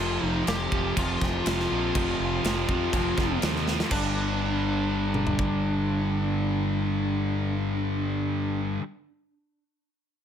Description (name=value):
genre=hard rock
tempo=122 BPM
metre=4/4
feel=straight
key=unclear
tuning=A4 = 441 Hz
part: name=smooth overdriven lead guitar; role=melody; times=0.0-8.6 s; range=D4 to G4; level=-31 LUFS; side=left 2 dB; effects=plate reverb
part: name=cranked stack guitar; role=riff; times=0.0-8.8 s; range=F2 to G3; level=-31 LUFS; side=right 9 dB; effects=overdrive
part: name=scooped high-gain guitar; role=riff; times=0.0-8.8 s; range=F2 to G3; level=-33 LUFS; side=equal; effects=distortion
part: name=sludgy distorted guitar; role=riff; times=0.0-8.8 s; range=F2 to G3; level=-32 LUFS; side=left 9 dB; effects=overdrive
part: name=growling fingered electric bass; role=bass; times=0.0-8.8 s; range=F1 to F2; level=-31 LUFS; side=equal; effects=overdrive
part: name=tight metal drum kit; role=drums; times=0.5-5.5 s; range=crash cymbal, kick drum, snare drum, toms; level=-30 LUFS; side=equal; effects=none
room=light reverb, studio reverb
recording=none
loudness=-24 LUFS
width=side -8 dB against mid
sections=0.0-3.9 A section; 3.9-7.8 B section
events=drum fill 3.7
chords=0.0 F5; 3.9 G5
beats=0.47 0.96 1.46 | 1.95 2.44 2.93 3.42 | 3.91 4.41 4.90 5.39 | 5.88 6.37 6.86 7.35